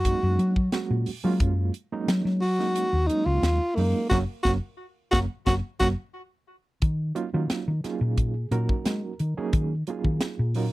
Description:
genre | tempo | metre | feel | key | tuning
electric jazz fusion | 88 BPM | 4/4 | straight | Eb minor from 6.8 s | A4 = 440 Hz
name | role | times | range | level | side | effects
breathy tenor saxophone | melody | 0.0-5.9 s | A#3 to F#4 | -25 LUFS | equal | none
hollow-body short-scale fingered electric bass | bass | 0.0-10.7 s | F#1 to Ab3 | -25 LUFS | equal | none
crisp fusion drum kit | drums | 0.0-10.7 s | hi-hat, kick drum, snare drum | -27 LUFS | equal | none
overdriven reed electric piano | accompaniment | 0.1-10.7 s | F#3 to Bb4 | -30 LUFS | right 5 dB | fast tremolo
room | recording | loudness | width
little or no reverb | dry, close 1970s-style studio recording | -23 LUFS | side -18 dB against mid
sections
0.0-6.8 A section; 6.8-10.7 B section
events
band accent 4.1-6.8; drum fill 6.5-6.8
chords
0.0 F#6; 6.8 Ebm7

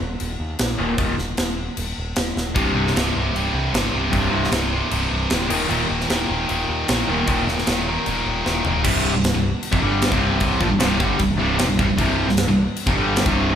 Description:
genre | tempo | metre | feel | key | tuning
hard rock | 153 BPM | 4/4 | straight | C minor | A4 = 440 Hz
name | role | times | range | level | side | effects
growling picked electric bass | bass | 0.0-13.5 s | C1 to Eb2 | -26 LUFS | equal | overdrive
tight metal drum kit | drums | 0.2-13.3 s | crash cymbal, kick drum, snare drum, toms | -23 LUFS | equal | none
overdriven semi-hollow guitar | riff | 0.8-13.5 s | C2 to G3 | -22 LUFS | equal | none
heavy high-gain guitar | riff | 2.5-13.6 s | C2 to G3 | -22 LUFS | equal | distortion
room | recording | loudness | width
moderate large studio reverb, RT60 1.2 s | band playing live in one room | -18 LUFS | side -9 dB against mid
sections
0.0-8.8 A section; 8.8-13.6 B section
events
drum fill 2.4, 8.4-8.8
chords
0.0 Eb5; 2.6 C5; 5.5 Eb5; 8.8 C5

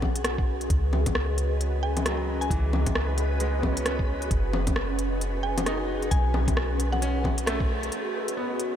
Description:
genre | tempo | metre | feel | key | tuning
future garage | 133 BPM | 4/4 | swing 60% on 16ths | unclear | A4 = 441 Hz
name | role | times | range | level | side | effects
mallet-like synth pluck | melody | 0.0-7.2 s | F#5 to G#5 | -37 LUFS | equal | chorus, vintage 12-bit sampler grit, ping-pong delay
ethereal airy pad | sustained chords | 0.0-8.8 s | C#4 to D#5 | -32 LUFS | equal | ensemble chorus, built-in reverb, phaser, sidechain pumping
soft 808-style bass | bass | 0.0-7.9 s | F#1 to C#2 | -27 LUFS | equal | sidechain pumping
electronic kick drum | drums | 0.0-7.7 s | none | -27 LUFS | equal | none
organic electronic drum kit | drums | 0.0-8.7 s | bongos, hi-hat, rim click | -30 LUFS | left 1 dB | overdrive
backwards swelling texture | texture | 1.7-7.9 s | B4 | -41 LUFS | equal | built-in reverb, ensemble chorus
bright upright piano | accompaniment | 2.1-8.8 s | E3 to D#4 | -36 LUFS | right 1 dB | vintage 12-bit sampler grit, sidechain pumping, tape echo
room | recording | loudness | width
moderate huge ambient reverb, RT60 9.1 s | dreamy mix soaked in reverb | -24 LUFS | side -9 dB against mid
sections
0.0-7.9 A section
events
band accent 7.5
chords
0.0 B; 0.7 C#m9; 4.3 F#5; 6.1 B7; 7.9 C#sus2

